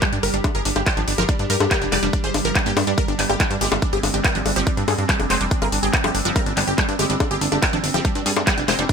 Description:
psychedelic trance; 142 BPM; 4/4; straight; A4 = 443 Hz
supersaw stab; melody; 0.0-8.9 s; D4 to D5; -25 LUFS; right 1 dB; phaser, vintage 12-bit sampler grit, sidechain pumping, tape echo
evolving wavetable pad; sustained chords; 0.0-8.9 s; G3 to G4; -27 LUFS; right 2 dB; chorus, built-in reverb, sidechain pumping
wide unison pluck; riff; 0.0-8.8 s; F3 to Ab4; -27 LUFS; right 1 dB; auto-pan, sidechain pumping, dub echo
drum and bass drum kit; drums; 0.0-8.9 s; bongos, handclaps, hi-hat; -23 LUFS; left 3 dB
electronic kick drum; drums; 0.0-8.9 s; -22 LUFS; equal; overdrive
plucky analog bass; bass; 0.1-8.9 s; F1 to G2; -25 LUFS; equal
light reverb; -17 LUFS; side -6 dB against mid
0.0-8.9 A section
0.0 G5

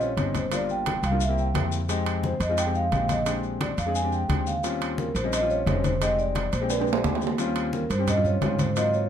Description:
Afro-Cuban jazz; 175 BPM; 4/4; straight; Eb mixolydian; A4 = 440 Hz
vibraphone with soft mallets; melody; 0.0-9.1 s; Bb4 to Ab5; -28 LUFS; right 1 dB; plate reverb
clear concert grand piano; accompaniment; 0.0-9.1 s; Gb3 to Ab4; -30 LUFS; left 6 dB
upright bass; bass; 0.0-9.1 s; F1 to Ab2; -28 LUFS; right 1 dB
congas; percussion; 0.0-9.1 s; -31 LUFS; left 2 dB
maracas; percussion; 0.0-9.1 s; -39 LUFS; left 7 dB
timbales; percussion; 0.2-8.9 s; -31 LUFS; right 7 dB
moderate studio reverb, RT60 0.6 s; -23 LUFS; side -9 dB against mid
0.0-7.4 A section; 7.4-9.1 A section
drum fill 6.7-7.4
0.0 Eb13; 0.5 Gm7; 1.2 C7; 1.9 Fm7; 3.3 Bb13; 4.6 Eb13; 6.0 Fm7; 6.7 Bb13; 7.4 Eb13

